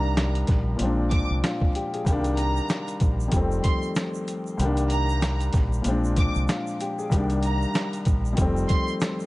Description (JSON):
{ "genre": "hip hop, boom-bap hip-hop", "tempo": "95 BPM", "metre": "4/4", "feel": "swing 58% on 16ths", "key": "C minor", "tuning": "A4 = 441 Hz", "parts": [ { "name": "rich studio violin section", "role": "melody", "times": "0.0-8.9 s", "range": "Bb5 to D6", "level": "-33 LUFS", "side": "right 3 dB", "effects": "high-pass filter, low-pass filter, tape echo" }, { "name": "dark baby grand piano", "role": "accompaniment", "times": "0.0-9.3 s", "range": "C2 to Ab4", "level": "-27 LUFS", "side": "left 2 dB", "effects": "high-pass filter, low-pass filter" }, { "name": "deep dub fingered electric bass", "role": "bass", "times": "0.0-8.6 s", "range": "F1 to C2", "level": "-25 LUFS", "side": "equal", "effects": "none" }, { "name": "boom bap sampler-style drum kit", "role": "drums", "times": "0.2-9.2 s", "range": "hi-hat, kick drum, snare drum", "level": "-24 LUFS", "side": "equal", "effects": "none" }, { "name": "egg shaker", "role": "percussion", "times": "2.1-9.3 s", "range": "none", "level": "-48 LUFS", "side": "right 6 dB", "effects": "none" } ], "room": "little or no reverb", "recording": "vinyl crackle, nothing above 10.8 kHz", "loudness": "-22 LUFS", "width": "side -19 dB against mid", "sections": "0.0-9.3 A section", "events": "none", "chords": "0.0 Cm7; 0.8 Bb7; 2.1 Cm7; 3.3 F7; 4.6 Cm7; 5.9 Bb7; 7.1 Cm7; 8.4 F7", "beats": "0.17 0.80 1.43 | 2.06 2.70 3.33 3.96 | 4.59 5.22 5.86 6.49 | 7.12 7.75 8.38 9.01" }